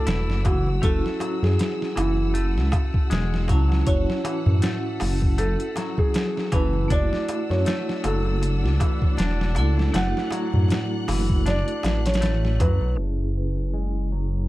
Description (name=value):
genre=trip hop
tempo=79 BPM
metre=4/4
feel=swing 56% on 16ths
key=F# minor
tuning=A4 = 440 Hz
part: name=felt-muted upright piano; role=melody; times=0.0-12.9 s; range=E4 to F#5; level=-30 LUFS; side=right 1 dB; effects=vintage 12-bit sampler grit, tape echo
part: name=vibraphone with hard mallets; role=accompaniment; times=0.0-14.5 s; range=A3 to A5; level=-30 LUFS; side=right 1 dB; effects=tremolo, tape echo
part: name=clear studio string section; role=sustained chords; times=0.0-14.5 s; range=D4 to F#6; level=-38 LUFS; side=left 1 dB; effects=low-pass filter
part: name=semi-hollow electric guitar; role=arpeggios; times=0.0-14.5 s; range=E3 to E4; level=-34 LUFS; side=left 3 dB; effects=low-pass filter, ping-pong delay
part: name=dark detuned saw bass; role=bass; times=0.1-14.5 s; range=E1 to F#2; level=-22 LUFS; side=equal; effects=none
part: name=boom bap sampler-style drum kit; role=drums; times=0.1-12.8 s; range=hi-hat, kick drum, snare drum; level=-24 LUFS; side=equal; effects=none
part: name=darbuka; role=percussion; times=0.1-12.9 s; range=none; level=-32 LUFS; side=right 1 dB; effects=none
room=small room ambience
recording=dark, warm production, vinyl crackle, low-pass filter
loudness=-20 LUFS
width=side -17 dB against mid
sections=0.0-13.0 A section; 13.0-14.5 B section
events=filter sweep on clean electric guitar 13.0-14.5; filter sweep 13.0-14.5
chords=0.0 Dadd9; 0.8 F#m7; 6.9 Dadd9; 13.0 F#m9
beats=0.07 | 0.83 1.59 2.35 3.11 | 3.87 4.63 5.38 6.14 | 6.90 7.66 8.42 9.18 | 9.94 10.70 11.46 12.22 | 12.98 13.74